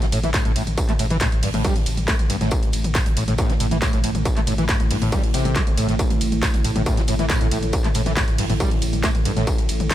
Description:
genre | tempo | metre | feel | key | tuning
driving peak-time techno | 138 BPM | 4/4 | straight | unclear | A4 = 440 Hz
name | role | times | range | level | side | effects
screaming distorted acid line | riff | 0.0-9.9 s | G2 to A3 | -25 LUFS | equal | distortion, ensemble chorus, sidechain pumping, ping-pong delay
analog drone | drone | 0.7-9.9 s | A2 | -29 LUFS | right 1 dB | chorus, sidechain pumping
open jazz drum kit | drums | 0.0-9.9 s | hi-hat, snare drum, tambourine | -36 LUFS | right 1 dB | sidechain pumping on hats, high-pass filter on hats, high-pass filter on snare, sidechain pumping on perc, high-pass filter on perc, high-pass filter on room
techno drum kit | drums | 0.0-9.9 s | handclaps, hi-hat, ride cymbal, toms | -26 LUFS | left 1 dB | sidechain pumping on hats, sidechain pumping on cymbals, sidechain pumping on toms
saturated sub bass | bass | 0.1-9.9 s | A1 | -26 LUFS | equal | overdrive, sidechain pumping, low-pass filter
electronic kick drum | drums | 0.3-9.9 s | none | -22 LUFS | equal | distortion
room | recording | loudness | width
little or no reverb | none | -18 LUFS | side -12 dB against mid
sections
0.0-9.9 A section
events
none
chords
none

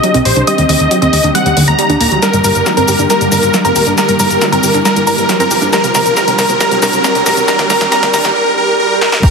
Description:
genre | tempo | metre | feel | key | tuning
uplifting trance | 137 BPM | 4/4 | straight | unclear | A4 = 441 Hz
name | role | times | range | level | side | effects
supersaw chords | melody | 0.0-9.3 s | Bb4 to Bb5 | -13 LUFS | equal | vintage 12-bit sampler grit, sidechain pumping, low-pass filter, ping-pong delay
wide unison pluck | second line | 0.0-9.3 s | Bb5 to Bb6 | -19 LUFS | right 1 dB | cassette tape, sidechain pumping, ping-pong delay
shimmering ambient pad | sustained chords | 0.0-9.3 s | D3 to G4 | -19 LUFS | left 1 dB | chorus, built-in reverb, sidechain pumping
wide unison pluck | arpeggios | 0.0-9.3 s | D3 to G4 | -18 LUFS | right 2 dB | sidechain pumping, ping-pong delay
house drum kit | drums | 0.0-9.3 s | crash cymbal, hi-hat, shaker, snare drum | -17 LUFS | left 2 dB | high-pass filter on hats, high-pass filter on snare, high-pass filter on perc, high-pass filter on cymbals
riser and swell | sound effects | 1.4-9.2 s | none | -21 LUFS | right 2 dB | none
plucky analog bass | bass | 0.1-8.3 s | D1 to Eb2 | -19 LUFS | equal | sidechain pumping
electronic kick drum | drums | 9.2-9.3 s | none | -6 LUFS | equal | none
room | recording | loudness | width
moderate huge ambient reverb, RT60 7.1 s | dense, heavily limited modern master, high-pass filter | -9 LUFS | side -4 dB against mid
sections
0.0-9.2 A section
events
build-up 0.0-9.2; filter sweep on synth arpeggio sound 0.0-9.2; filter sweep on synth pluck 0.0-9.2; riser 1.4-8.4; drum fill 2.2-8.4, 9.0; swell 8.4-9.2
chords
0.5 Eb; 2.2 Gm; 5.7 Cmadd9; 7.5 Eb

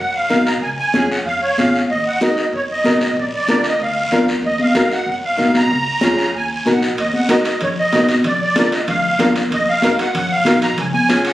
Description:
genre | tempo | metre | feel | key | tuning
latin, cumbia | 189 BPM | 4/4 | straight | Eb minor | A4 = 440 Hz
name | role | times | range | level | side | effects
musette accordion | melody | 0.0-11.3 s | Db5 to Bb5 | -18 LUFS | right 1 dB | none
upright bass | bass | 0.0-11.2 s | Ab1 to Gb2 | -29 LUFS | equal | none
nylon-string guitar | accompaniment | 0.3-11.3 s | Db4 to Bb4 | -20 LUFS | left 1 dB | none
congas | percussion | 0.3-11.3 s | none | -20 LUFS | left 1 dB | none
guiro | percussion | 0.3-11.3 s | none | -26 LUFS | left 1 dB | none
timbales | percussion | 7.0-11.3 s | none | -26 LUFS | right 3 dB | none
room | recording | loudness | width
moderate large studio reverb, RT60 1.1 s | recorded on a phone in the room, studio reverb, compression | -14 LUFS | side -15 dB against mid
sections
0.0-7.0 A section; 7.0-11.3 A section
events
none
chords
0.0 Ebmadd9; 0.6 Db; 1.9 Ebm; 3.2 Bb; 4.4 Ebmadd9; 5.7 Db; 6.3 Ebm; 8.2 Bb; 9.5 Ebmadd9; 10.8 Db

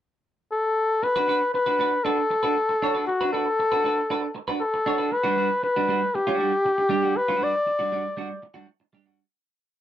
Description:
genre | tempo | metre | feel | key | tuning
disco | 117 BPM | 4/4 | straight | D major | A4 = 441 Hz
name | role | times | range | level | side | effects
warm flugelhorn | melody | 0.5-8.4 s | F#4 to D5 | -22 LUFS | left 2 dB | slapback echo
semi-hollow electric guitar | accompaniment | 1.0-9.2 s | G3 to C#5 | -28 LUFS | right 6 dB | wide subtle chorus
room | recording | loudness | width
little or no reverb | dry, close 1970s-style studio recording | -21 LUFS | side -11 dB against mid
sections
0.0-1.0 pickup bar; 1.0-9.2 verse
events
fade-out 7.2-9.2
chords
0.0 N.C.; 1.0 D6; 5.1 Gmaj7

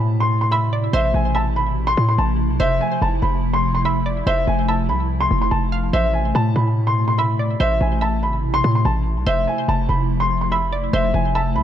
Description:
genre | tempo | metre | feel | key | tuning
hip hop | 144 BPM | 4/4 | half-time | A harmonic minor | A4 = 440 Hz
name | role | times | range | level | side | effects
dark concert grand piano | melody | 0.0-11.6 s | E5 to C6 | -21 LUFS | equal | low-pass filter, ping-pong delay
hollow soft pad | sustained chords | 0.0-11.6 s | B2 to E4 | -25 LUFS | equal | ensemble chorus
hard-hitting 808-style bass | bass | 0.0-11.6 s | F1 to A2 | -20 LUFS | equal | none
hollow square pluck | second line | 0.5-11.6 s | C5 to F5 | -29 LUFS | right 4 dB | chorus, ping-pong delay
room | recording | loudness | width
little or no reverb | none | -17 LUFS | side -10 dB against mid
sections
0.0-11.6 A section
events
none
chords
0.0 Amadd9; 2.6 Fmaj7; 5.9 Amadd9; 9.3 Fmaj7

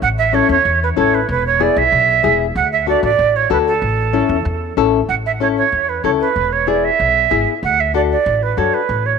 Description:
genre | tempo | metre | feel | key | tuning
latin, cumbia | 189 BPM | 4/4 | straight | A major | A4 = 440 Hz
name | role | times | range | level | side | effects
jazz flute | melody | 0.0-9.2 s | A4 to F#5 | -15 LUFS | right 8 dB | tape echo
upright bass | bass | 0.0-9.2 s | E1 to F#2 | -22 LUFS | left 1 dB | none
nylon-string guitar | accompaniment | 0.3-8.8 s | B3 to A4 | -19 LUFS | left 13 dB | none
room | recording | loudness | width
moderate plate reverb, RT60 2.9 s | 1960s-style stereo with parts hard left and right | -13 LUFS | side -6 dB against mid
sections
0.0-5.1 A section; 5.1-9.2 B section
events
none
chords
0.0 A; 1.3 E; 2.6 D; 3.8 A; 6.4 E; 7.6 D

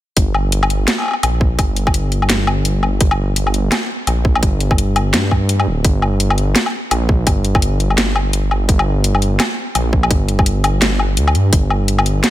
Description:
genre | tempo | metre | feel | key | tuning
half-time drum and bass | 169 BPM | 4/4 | swing 59% on 16ths, half-time | G minor | A4 = 440 Hz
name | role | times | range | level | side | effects
dark detuned saw bass | bass | 0.2-12.2 s | D1 to G2 | -16 LUFS | equal | tube saturation
drum and bass drum kit | drums | 0.2-12.3 s | hi-hat, snare drum, woodblock | -18 LUFS | left 1 dB | overdrive
electronic kick drum | drums | 0.2-11.6 s | none | -15 LUFS | equal | overdrive
room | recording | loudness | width
digital ambience | none | -13 LUFS | side -14 dB against mid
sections
0.2-12.3 A section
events
none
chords
none

